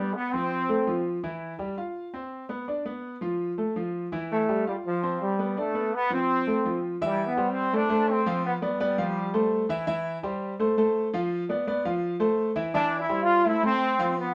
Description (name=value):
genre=latin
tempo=167 BPM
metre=4/4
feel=straight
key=unclear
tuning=A4 = 440 Hz
part: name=bright trombone section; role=melody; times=0.0-1.1, 4.3-9.7, 12.7-14.3 s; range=F3 to F4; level=-28 LUFS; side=equal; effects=none
part: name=clear concert grand piano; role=accompaniment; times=0.0-14.3 s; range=E3 to F5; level=-30 LUFS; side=equal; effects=none
room=moderate small room reverb, RT60 0.6 s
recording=band playing live in one room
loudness=-27 LUFS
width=mono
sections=0.0-7.0 A section; 7.0-14.3 B section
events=none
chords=0.0 G7; 0.5 F; 1.2 Em; 2.0 F5; 2.7 Bdim; 3.4 F; 4.1 Emadd11; 4.8 F5; 5.6 Bm7b5; 6.3 F; 7.0 C; 7.7 F; 8.4 G7; 9.2 Fmaj7; 9.9 C; 10.6 F; 11.3 Bdim/F; 12.0 Fmaj7; 12.7 C; 13.5 F